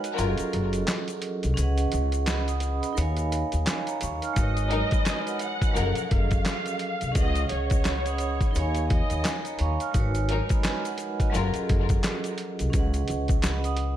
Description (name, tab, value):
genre	hip hop, boom-bap hip-hop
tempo	86 BPM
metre	4/4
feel	swing 59% on 16ths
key	G# dorian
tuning	A4 = 439 Hz
part	vibraphone with medium hard mallets	accompaniment	0.0-14.0 s	E#3 to E#6	-30 LUFS	right 3 dB	cassette tape, high-pass filter, low-pass filter
part	trip hop sampler-style drum kit	drums	0.0-14.0 s	handclaps, hi-hat, kick drum, snare drum	-27 LUFS	equal	none
part	tube shaker	percussion	0.0-13.8 s	none	-44 LUFS	left 17 dB	none
part	warm studio string section	stabs	0.2-0.5, 4.7-6.1, 10.3-11.6 s	E#3 to A#4	-34 LUFS	left 7 dB	high-pass filter, low-pass filter, ping-pong delay
part	upright bass	bass	0.2-14.0 s	F#1 to D#2	-27 LUFS	equal	none
part	warm studio violin section	melody	4.4-9.4 s	C#5 to F#5	-32 LUFS	equal	high-pass filter, low-pass filter, ping-pong delay
room	light reverb, studio reverb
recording	none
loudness	-23 LUFS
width	side -11 dB against mid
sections	0.0-14.0 A section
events	break 0.0-4.4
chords	0.2 F#maj7; 1.6 C#9sus4; 3.0 D#9sus4; 4.4 G#m11; 5.8 F#maj7; 7.2 C#9sus4; 8.6 D#9sus4; 9.9 G#m11; 11.3 F#maj7; 12.7 C#9sus4